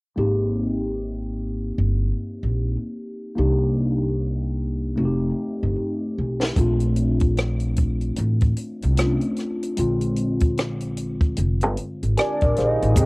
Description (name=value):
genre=R&B, neo-soul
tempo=75 BPM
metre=4/4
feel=swing 62% on 16ths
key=unclear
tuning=A4 = 441 Hz
part: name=mellow tine electric piano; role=accompaniment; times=0.2-13.1 s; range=D3 to Ab5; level=-25 LUFS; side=left 1 dB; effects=phaser, cassette tape
part: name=upright bass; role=bass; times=0.2-13.1 s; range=F1 to C2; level=-23 LUFS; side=equal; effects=none
part: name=compact cocktail drum kit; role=drums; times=6.4-13.1 s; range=hi-hat, kick drum, rim click, snare drum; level=-23 LUFS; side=equal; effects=cassette tape
part: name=warm velvety synth lead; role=melody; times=12.2-13.1 s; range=D5 to Eb5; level=-23 LUFS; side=right 1 dB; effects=chorus, tremolo
part: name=lush unison pad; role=sustained chords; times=13.0-13.1 s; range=C3 to G4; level=-22 LUFS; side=right 1 dB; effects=chorus, cassette tape
part: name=maracas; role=percussion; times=13.0-13.1 s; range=none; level=-30 LUFS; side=right 5 dB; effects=none
room=small room ambience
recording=home recording on cassette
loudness=-20 LUFS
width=side -26 dB against mid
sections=0.2-13.0 A section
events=drum fill 5.0-6.6; tine electric piano fill 11.8-13.0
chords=0.2 Abmaj7; 3.4 Cm7; 5.0 F7; 6.6 Bbmaj7; 9.8 Bb7